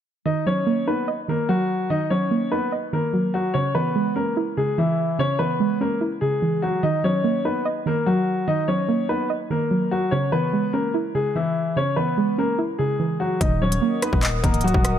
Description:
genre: hip hop, drill.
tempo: 146 BPM.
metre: 4/4.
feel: half-time.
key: Eb phrygian.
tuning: A4 = 441 Hz.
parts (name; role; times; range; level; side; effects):
warm upright piano; melody; 0.3-15.0 s; Fb3 to Eb5; -23 LUFS; left 3 dB; low-pass filter, tape echo.
soft round pluck; accompaniment; 0.3-15.0 s; Db3 to Eb5; -23 LUFS; right 3 dB; chorus, low-pass filter.
warbly tape-like pad; sustained chords; 13.8-15.0 s; Bb4 to Eb6; -29 LUFS; left 2 dB; chorus, built-in reverb.
growling 808-style bass; bass; 13.4-15.0 s; Db1 to Eb1; -24 LUFS; left 1 dB; none.
drill drum kit; drums; 13.4-14.9 s; handclaps, hi-hat, kick drum, rim click; -21 LUFS; left 1 dB; none.
room: light reverb.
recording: none.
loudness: -20 LUFS.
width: side -9 dB against mid.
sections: 0.3-13.4 A section; 13.4-15.0 B section.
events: none.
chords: 0.3 Ebm; 3.5 Dbm; 6.8 Ebm; 10.1 Dbm; 13.4 Ebm.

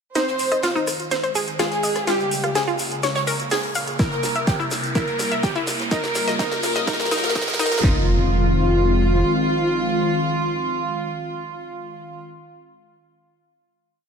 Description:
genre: progressive house.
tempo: 125 BPM.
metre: 4/4.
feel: straight.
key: F minor.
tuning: A4 = 440 Hz.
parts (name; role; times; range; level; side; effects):
plucky unison lead; melody; 0.2-12.2 s; F4 to C5; -26 LUFS; equal; sidechain pumping, tape echo.
warm studio violin section; second line; 0.2-12.2 s; F4 to C5; -27 LUFS; right 2 dB; sidechain pumping, tape echo.
warm analog pad; sustained chords; 0.2-12.2 s; C3 to F4; -27 LUFS; left 1 dB; chorus, sidechain pumping.
analog pluck; arpeggios; 0.2-8.1 s; Eb4 to F5; -25 LUFS; equal; chorus, cassette tape, sidechain pumping, tape echo.
house drum kit; drums; 0.2-7.9 s; hi-hat, rim click, snare drum; -28 LUFS; equal; overdrive, high-pass filter on snare, sidechain pumping on hats, high-pass filter on hats, high-pass filter on room.
jazz brush drum kit; drums; 0.2-7.7 s; hi-hat, ride cymbal, snare drum; -33 LUFS; right 2 dB; sidechain pumping on cymbals, high-pass filter on cymbals, sidechain pumping on hats, high-pass filter on hats, high-pass filter on snare, high-pass filter on room.
tube shaker; percussion; 0.2-7.8 s; none; -35 LUFS; left 2 dB; none.
riser and impact; sound effects; 1.3-12.3 s; none; -30 LUFS; right 1 dB; none.
round analog bass; bass; 0.4-9.2 s; F1 to Bb2; -23 LUFS; equal; sidechain pumping, high-pass filter.
house drum kit; drums; 4.0-7.9 s; handclaps, kick drum, snare drum; -23 LUFS; equal; overdrive.
room: light reverb, small room reverb.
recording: high-pass filter.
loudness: -19 LUFS.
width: side -6 dB against mid.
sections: 0.2-7.8 build; 7.8-11.7 final chord.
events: build-up 0.2-7.8; drum fill 0.2-7.8; filter sweep on synth pluck 0.2-7.8; filter sweep on analog synth pad 0.2-7.8; riser 1.3-7.8.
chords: 0.2 Fm7; 2.1 Bbm7; 4.0 C7; 5.9 Gm7b5; 7.8 Fm7.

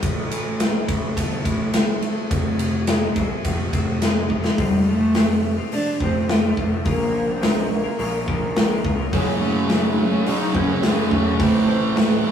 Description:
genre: quiet-loud alternative rock.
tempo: 105 BPM.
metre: 4/4.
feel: straight.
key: unclear.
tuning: A4 = 439 Hz.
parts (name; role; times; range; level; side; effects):
twelve-string electric guitar; arpeggios; 0.0-12.3 s; F2 to Bb4; -29 LUFS; left 4 dB; none.
fuzz picked electric bass; bass; 0.0-12.3 s; E1 to Db2; -25 LUFS; equal; overdrive.
big rock drum kit; drums; 0.0-12.1 s; hi-hat, kick drum, ride cymbal, snare drum; -22 LUFS; equal; none.
warm cello; melody; 4.6-12.0 s; G3 to Eb4; -23 LUFS; left 1 dB; none.
thick fuzz guitar; riff; 9.1-12.3 s; F#2 to A3; -20 LUFS; right 2 dB; distortion.
room: moderate small room reverb, RT60 0.5 s.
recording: rough rehearsal-room recording, small room reverb.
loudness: -18 LUFS.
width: side -8 dB against mid.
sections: 0.0-4.6 A section; 4.6-12.3 B section.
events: drum fill 4.3.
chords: 0.0 Am; 2.3 Fm; 4.6 F; 6.9 Bbm; 9.1 F#m; 11.4 Am.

